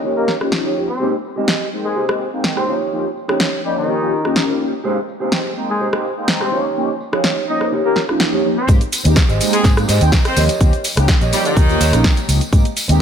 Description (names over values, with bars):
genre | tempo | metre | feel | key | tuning
filtered disco house | 125 BPM | 4/4 | straight | Ab major | A4 = 438 Hz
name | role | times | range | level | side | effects
mellow synth brass | accompaniment | 0.0-13.0 s | F3 to G5 | -21 LUFS | left 1 dB | chorus, phaser, sidechain pumping, low-pass filter
mellow electric guitar | riff | 0.0-12.9 s | Eb4 to F5 | -23 LUFS | right 3 dB | sidechain pumping, low-pass filter
tambourine | percussion | 0.0-13.0 s | none | -28 LUFS | left 2 dB | sidechain pumping on perc, low-pass filter on perc
bright horn section | melody | 0.2-12.1 s | Eb3 to Eb5 | -23 LUFS | equal | sidechain pumping, low-pass filter, ping-pong delay
house drum kit | drums | 0.3-13.0 s | hi-hat, rim click, shaker, snare drum | -20 LUFS | equal | small room ambience
vintage muted fingered electric bass | bass | 8.7-13.0 s | Ab1 to Ab2 | -16 LUFS | equal | tube saturation, sidechain pumping, low-pass filter
electronic kick drum | drums | 8.7-12.6 s | none | -13 LUFS | equal | small room ambience
room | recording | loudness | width
light reverb | none | -14 LUFS | side -8 dB against mid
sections
0.0-8.7 A section; 8.7-13.0 B section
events
filter sweep 0.0-8.7; drop 8.7-13.0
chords
0.0 Eb7; 1.0 Abmaj7; 2.7 Eb7; 4.8 Abmaj7; 6.5 Eb7; 8.7 Abmaj7; 10.4 Eb7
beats
0.04 0.53 | 1.00 1.49 1.97 2.44 | 2.92 3.40 3.88 4.37 | 4.84 5.33 5.80 6.29 | 6.76 7.25 7.72 8.21 | 8.69 9.16 9.64 10.12 | 10.61 11.09 11.56 12.04 | 12.53 13.01